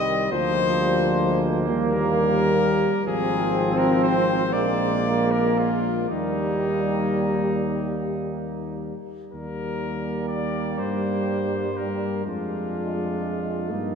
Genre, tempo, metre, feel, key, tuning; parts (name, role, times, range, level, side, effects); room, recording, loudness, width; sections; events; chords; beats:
classical, hymn-like piece for brass band; 36-45 BPM (dotted quarters); 6/8; rubato; Eb major; A4 = 443 Hz
clear cornet; melody; 0.0-13.9 s; Eb4 to Eb5; -28 LUFS; left 4 dB
mellow flugelhorn; second line; 0.0-13.9 s; Bb3 to Eb4; -29 LUFS; right 6 dB
mellow euphonium; accompaniment; 0.0-13.9 s; Eb3 to Bb3; -27 LUFS; left 1 dB
warm trombone; accompaniment; 0.0-13.9 s; F3 to C4; -28 LUFS; right 2 dB
mellow tuba; bass; 0.0-13.9 s; Ab1 to G2; -28 LUFS; left 1 dB
wet cathedral reverb, RT60 4.2 s; minimal, uncompressed stereo recording; -21 LUFS; side -6 dB against mid
0.0-9.3 A section; 9.3-13.9 B section
0.3 Bb/D; 1.7 Eb; 3.1 Fm/Ab; 4.5 Bb7; 6.1 Eb; 12.3 Ddim/F
| 0.33 1.70 | 3.07 4.54 | 6.11 7.71 | 9.33 10.79 | 12.26 13.70